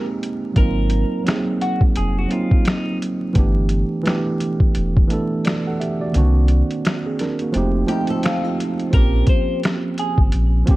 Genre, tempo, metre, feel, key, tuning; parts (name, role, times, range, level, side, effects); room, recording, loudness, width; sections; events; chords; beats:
lo-fi hip hop; 86 BPM; 4/4; swing 61% on 16ths; A4 = 440 Hz
electric guitar through a small old amp; melody; 0.0-3.0, 8.9-10.2 s; Eb4 to C5; -27 LUFS; equal; phaser, analog delay
mellow tine electric piano; accompaniment; 0.0-10.8 s; D3 to Gb5; -21 LUFS; right 2 dB
lo-fi sampler-style drum kit; drums; 0.2-10.8 s; finger snaps, hi-hat, kick drum, snare drum; -18 LUFS; equal; overdrive
warm sub bass; bass; 0.6-10.6 s; E1 to C2; -18 LUFS; equal
flamenco guitar; second line; 7.9-8.9 s; Eb4 to A4; -28 LUFS; left 2 dB; analog delay
digital ambience; vinyl crackle; -17 LUFS; side -18 dB against mid
0.0-8.9 A section; 8.9-10.8 B section
kick muted 6.1-8.9
0.0 Abmaj9; 0.6 Ab13; 3.4 G69; 6.1 Cm7b5; 7.5 F7; 8.9 Bbm69
| 0.56 1.26 1.96 2.66 | 3.35 4.05 4.75 5.45 | 6.14 6.84 7.54 8.24 | 8.94 9.63 10.33